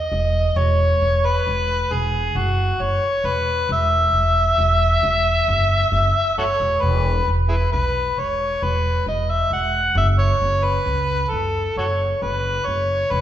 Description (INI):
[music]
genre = progressive instrumental, band music in an uneven meter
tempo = 134 BPM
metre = 7/4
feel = straight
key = E major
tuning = A4 = 441 Hz
[part]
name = overdriven harmonica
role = melody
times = 0.0-13.2 s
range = E4 to F#5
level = -19 LUFS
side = left 1 dB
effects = none
[part]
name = upright bass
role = bass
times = 0.1-13.2 s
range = E1 to C#2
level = -21 LUFS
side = right 1 dB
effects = none
[sound]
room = wet recital hall reverb, RT60 1.5 s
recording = recorded in a church or concert hall, nothing above 7.7 kHz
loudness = -17 LUFS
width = side -11 dB against mid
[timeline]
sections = 0.0-6.8 A section; 6.8-13.2 B section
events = none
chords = 0.0 N.C.; 0.6 Bsus4/E (rootless); 6.8 E5; 10.0 F#5